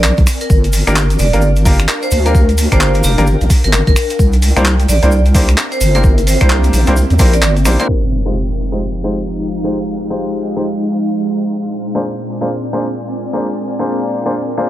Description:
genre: UK garage, two-step garage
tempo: 130 BPM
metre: 4/4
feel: swing 61% on 16ths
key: F dorian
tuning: A4 = 440 Hz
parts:
  - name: vibraphone with hard mallets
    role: melody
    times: 0.0-7.9 s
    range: G4 to D5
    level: -20 LUFS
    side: equal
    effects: digital delay
  - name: deep soft wobble bass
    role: bass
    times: 0.0-7.8 s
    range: F1 to E2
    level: -12 LUFS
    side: equal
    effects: chorus
  - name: breakbeat sampler-style drum kit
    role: drums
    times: 0.0-7.9 s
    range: finger snaps, handclaps, hi-hat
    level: -19 LUFS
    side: equal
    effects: overdrive, low-pass filter on hats, low-pass filter on snare, low-pass filter on room
  - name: tube shaker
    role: percussion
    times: 0.0-7.9 s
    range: none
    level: -27 LUFS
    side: right 2 dB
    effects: none
  - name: ethereal airy pad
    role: texture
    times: 0.0-14.7 s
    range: Ab3 to Ab5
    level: -22 LUFS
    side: equal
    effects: ensemble chorus, built-in reverb, sidechain pumping
  - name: electronic kick drum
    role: drums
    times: 0.2-7.3 s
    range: none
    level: -12 LUFS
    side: equal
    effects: overdrive
  - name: clear baby grand piano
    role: stabs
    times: 0.9-14.7 s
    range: Ab3 to C5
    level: -19 LUFS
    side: left 1 dB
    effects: low-pass filter, digital delay
  - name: soft string machine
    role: sustained chords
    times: 8.6-14.7 s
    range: Bb2 to C5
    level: -25 LUFS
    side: equal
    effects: ensemble chorus, sidechain pumping
  - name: impact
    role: sound effects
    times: 7.9-9.7 s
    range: none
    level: -20 LUFS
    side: equal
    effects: none
room: light reverb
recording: low-pass filter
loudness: -11 LUFS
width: side -14 dB against mid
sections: 0.0-7.9 A section; 7.9-14.7 B section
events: kick drops out 7.4-7.9; impact 7.9-9.7; filter sweep on string machine 7.9-14.7; filter sweep 7.9-14.7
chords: 0.0 Bb9; 0.5 Gm7; 4.2 C7; 7.9 Fm9; 11.3 Bb9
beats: 0.04 | 0.50 0.96 1.42 1.89 | 2.35 2.81 3.27 3.73 | 4.19 4.65 5.12 5.58 | 6.04 6.50 6.96 7.42 | 7.88 8.35 8.81 9.27 | 9.73 10.19 10.65 11.12 | 11.58 12.04 12.50 12.96 | 13.42 13.88 14.35

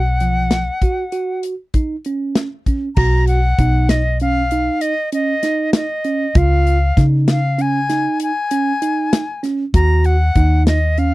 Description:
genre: progressive instrumental, band music in an uneven meter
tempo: 195 BPM (eighths)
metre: 11/8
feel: straight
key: unclear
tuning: A4 = 439 Hz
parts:
  - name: bright reedy silver concert flute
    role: melody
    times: 0.0-11.1 s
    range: D#5 to A#5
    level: -20 LUFS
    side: left 2 dB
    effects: none
  - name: hollow-body short-scale fingered electric bass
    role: bass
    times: 0.0-11.1 s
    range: B1 to C#3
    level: -15 LUFS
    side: equal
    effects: none
  - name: bell-like tine electric piano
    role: arpeggios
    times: 0.2-11.1 s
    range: E#3 to F#4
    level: -21 LUFS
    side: right 4 dB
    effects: none
  - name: modern studio drum kit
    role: drums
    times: 0.2-11.1 s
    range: crash cymbal, hi-hat, kick drum, snare drum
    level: -17 LUFS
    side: left 1 dB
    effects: none
room: little or no reverb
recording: dry, close 1970s-style studio recording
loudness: -14 LUFS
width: side -18 dB against mid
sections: 0.0-3.0 A section; 3.0-11.1 B section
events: none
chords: 0.0 B5; 3.0 B; 6.4 C#; 9.7 D#m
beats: 0.20 0.51 0.81 1.12 1.43 1.74 2.05 2.36 2.66 | 2.97 3.28 3.59 3.90 4.20 4.51 4.82 5.13 5.43 5.74 6.05 | 6.36 6.67 6.97 7.28 7.59 7.90 8.21 8.51 8.82 9.13 9.44 | 9.74 10.05 10.36 10.66 10.97

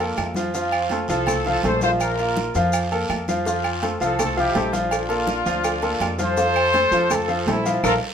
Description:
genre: latin, salsa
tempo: 164 BPM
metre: 4/4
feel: straight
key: F major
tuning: A4 = 440 Hz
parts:
  - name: brilliant trombone section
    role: melody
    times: 0.0-7.9 s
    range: C4 to C5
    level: -23 LUFS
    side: left 1 dB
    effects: none
  - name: clear baby grand piano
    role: accompaniment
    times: 0.0-8.0 s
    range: F3 to F5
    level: -23 LUFS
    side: equal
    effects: none
  - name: upright bass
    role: bass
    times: 0.0-8.0 s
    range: Bb1 to F2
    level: -29 LUFS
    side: equal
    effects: none
  - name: agogo bells and timbales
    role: percussion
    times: 0.0-7.9 s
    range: none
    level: -29 LUFS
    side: right 6 dB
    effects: none
  - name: maracas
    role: percussion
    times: 0.0-7.9 s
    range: none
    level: -36 LUFS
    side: left 5 dB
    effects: none
  - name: claves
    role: percussion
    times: 0.2-7.9 s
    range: none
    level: -34 LUFS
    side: left 2 dB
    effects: none
  - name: congas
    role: percussion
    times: 0.2-7.9 s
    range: none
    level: -31 LUFS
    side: left 2 dB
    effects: none
  - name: guiro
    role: percussion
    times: 0.2-7.9 s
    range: none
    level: -36 LUFS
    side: right 3 dB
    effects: none
  - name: cowbell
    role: percussion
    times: 3.5-7.9 s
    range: none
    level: -32 LUFS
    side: left 2 dB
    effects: none
room: moderate studio reverb, RT60 0.8 s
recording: minimal, uncompressed stereo recording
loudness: -19 LUFS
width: side -8 dB against mid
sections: 0.0-8.1 A section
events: drum fill 7.8; band accent 7.8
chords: 0.0 Bbmaj7; 0.5 F; 2.0 Bb5; 3.5 Fmaj7; 4.9 Bbmaj7; 6.4 Fmaj7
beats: 0.18 | 0.54 0.91 1.27 1.64 | 2.00 2.37 2.73 3.10 | 3.46 3.83 4.19 4.56 | 4.92 5.29 5.65 6.02 | 6.38 6.75 7.11 7.47 | 7.84

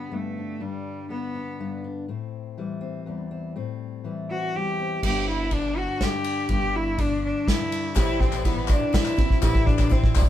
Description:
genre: indie folk with a building arrangement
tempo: 122 BPM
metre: 3/4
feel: straight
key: G major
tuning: A4 = 440 Hz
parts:
  - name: rich cello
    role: melody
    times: 0.0-1.8, 4.3-10.2 s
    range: G3 to G4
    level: -28 LUFS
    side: equal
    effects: none
  - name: fingerpicked steel-string acoustic guitar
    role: accompaniment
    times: 0.0-8.0 s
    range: E2 to G4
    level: -31 LUFS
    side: left 4 dB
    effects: none
  - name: upright bass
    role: bass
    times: 5.0-10.2 s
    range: G1 to A1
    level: -29 LUFS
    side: equal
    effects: none
  - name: unplugged drum kit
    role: drums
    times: 5.0-10.3 s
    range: crash cymbal, kick drum, ride cymbal, snare drum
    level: -23 LUFS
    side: equal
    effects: none
  - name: picked twelve-string acoustic guitar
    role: accompaniment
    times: 7.9-10.3 s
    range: A2 to E4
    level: -31 LUFS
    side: left 6 dB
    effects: none
  - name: dark upright piano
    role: arpeggios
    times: 8.0-10.3 s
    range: C4 to G4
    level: -32 LUFS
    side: right 2 dB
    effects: none
  - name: group handclap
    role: percussion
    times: 8.0-10.3 s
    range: none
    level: -34 LUFS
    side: left 6 dB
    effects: none
  - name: tambourine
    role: percussion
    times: 8.0-10.3 s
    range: none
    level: -43 LUFS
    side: right 7 dB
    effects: none
room: light reverb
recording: band playing live in one room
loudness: -23 LUFS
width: side -12 dB against mid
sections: 0.0-5.0 A section; 5.0-10.3 B section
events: build-up 5.0-10.3; drum fill 5.0-10.3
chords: 0.0 G; 2.1 Am7; 5.0 G; 8.0 Am7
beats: 0.12 | 0.61 1.10 1.59 | 2.08 2.58 3.07 | 3.56 4.05 4.54 | 5.03 5.52 6.01 | 6.50 6.99 7.48 | 7.97 8.46 8.95 | 9.44 9.93

